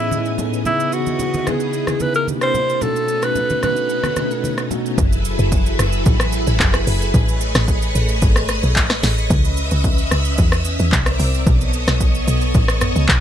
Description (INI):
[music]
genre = amapiano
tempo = 111 BPM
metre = 4/4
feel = straight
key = F# dorian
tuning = A4 = 440 Hz
[part]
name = warm alto saxophone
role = melody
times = 0.0-4.7 s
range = E4 to C5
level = -20 LUFS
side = right 1 dB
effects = tape echo
[part]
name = mellow tine electric piano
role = accompaniment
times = 0.0-5.0 s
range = A2 to D#5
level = -23 LUFS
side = left 1 dB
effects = medium stereo tremolo
[part]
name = string machine, violins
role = sustained chords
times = 0.0-13.2 s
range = A2 to G#5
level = -23 LUFS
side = equal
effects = ensemble chorus
[part]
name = deep house drum kit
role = drums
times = 0.1-13.2 s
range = handclaps, hi-hat, kick drum, rim click, shaker, snare drum, toms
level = -18 LUFS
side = equal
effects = none
[part]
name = congas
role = percussion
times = 0.1-4.8 s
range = none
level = -28 LUFS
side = right 2 dB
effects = none
[part]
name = woody log drum bass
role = bass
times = 5.0-13.2 s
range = F#1 to E2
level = -18 LUFS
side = equal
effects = none
[sound]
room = little or no reverb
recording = none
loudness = -15 LUFS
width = side -10 dB against mid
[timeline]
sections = 0.0-5.0 A section; 5.0-13.2 B section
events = drop 5.0-13.2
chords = 0.0 Amaj9#11; 0.7 C#m9; 2.3 C9; 2.8 B9; 5.0 F#m11; 7.1 Amaj9#11; 9.3 C#m9; 10.9 C9; 11.5 B9